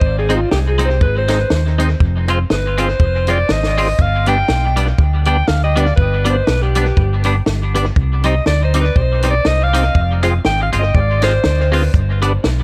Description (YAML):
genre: ska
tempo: 121 BPM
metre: 4/4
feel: swing 57% on 8ths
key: unclear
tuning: A4 = 440 Hz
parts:
  - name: clear alto saxophone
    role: melody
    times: 0.0-11.9 s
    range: F4 to G5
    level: -22 LUFS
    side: equal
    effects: tape echo
  - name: fingered electric bass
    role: bass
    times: 0.0-12.6 s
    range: F1 to Eb2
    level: -18 LUFS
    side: equal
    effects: none
  - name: compact cocktail drum kit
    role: drums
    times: 0.0-12.6 s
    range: hi-hat, kick drum, snare drum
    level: -20 LUFS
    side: equal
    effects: tape echo
  - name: clean electric guitar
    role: accompaniment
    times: 0.3-12.3 s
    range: G3 to F4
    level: -26 LUFS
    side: equal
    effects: subtle chorus, tape echo
  - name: percussive tonewheel organ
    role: stabs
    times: 0.3-12.5 s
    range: B3 to C5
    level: -25 LUFS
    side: equal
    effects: overdrive, chorus vibrato, slow rotary speaker
room: light reverb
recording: none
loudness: -15 LUFS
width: mono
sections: 0.0-12.6 A section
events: alto saxophone solo 0.0-12.6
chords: 0.0 Ab; 2.0 Fm; 4.0 G; 8.0 Cm; 10.0 Fm; 11.9 G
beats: | 0.01 0.51 1.01 1.51 | 2.00 2.50 3.00 3.49 | 3.99 4.49 4.98 5.48 | 5.98 6.47 6.97 7.47 | 7.96 8.46 8.96 9.46 | 9.95 10.45 10.95 11.44 | 11.94 12.44